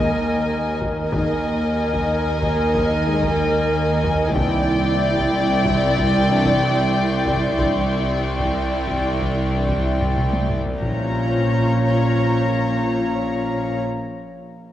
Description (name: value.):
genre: cinematic, suspense film score.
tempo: 93 BPM.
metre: 5/4.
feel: straight.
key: unclear.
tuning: A4 = 438 Hz.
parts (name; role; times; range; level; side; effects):
warm studio violin section; melody; 0.0-13.8 s; G5 to Bb5; -27 LUFS; left 3 dB; none.
dark studio violin section; second line; 0.0-13.8 s; Db5 to Eb5; -27 LUFS; left 2 dB; none.
dark studio viola section; accompaniment; 0.0-13.8 s; E4 to Bb4; -26 LUFS; right 1 dB; none.
glass harmonica; sustained chords; 0.0-13.8 s; Bb4 to Bb5; -28 LUFS; equal; none.
mellow French horn section; sustained chords; 0.0-13.8 s; E3 to Eb4; -29 LUFS; left 4 dB; none.
dark studio double bass section; bass; 0.0-13.8 s; Bb1 to Eb2; -27 LUFS; right 2 dB; none.
warm studio cello section; bass; 0.0-13.8 s; C2 to Bb2; -25 LUFS; right 2 dB; none.
bowed-like drone; drone; 0.0-13.8 s; Bb1 to Eb2; -27 LUFS; equal; built-in reverb.
taiko ensemble; drums; 0.8-12.1 s; none; -29 LUFS; equal; none.
dark studio violin section; texture; 4.4-13.7 s; C6 to G6; -35 LUFS; left 3 dB; none.
timpani; percussion; 10.8-13.8 s; Bb2; -33 LUFS; equal; none.
room: wet concert hall reverb, RT60 2.3 s.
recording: worn, warbling old tape, cassette tape, warbly pitch drift.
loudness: -18 LUFS.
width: side -12 dB against mid.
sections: 0.0-10.8 A section; 10.8-14.0 B section.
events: drum fill 10.0-10.8.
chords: 0.0 Ebsus4; 4.4 Cadd9; 10.8 Bbm.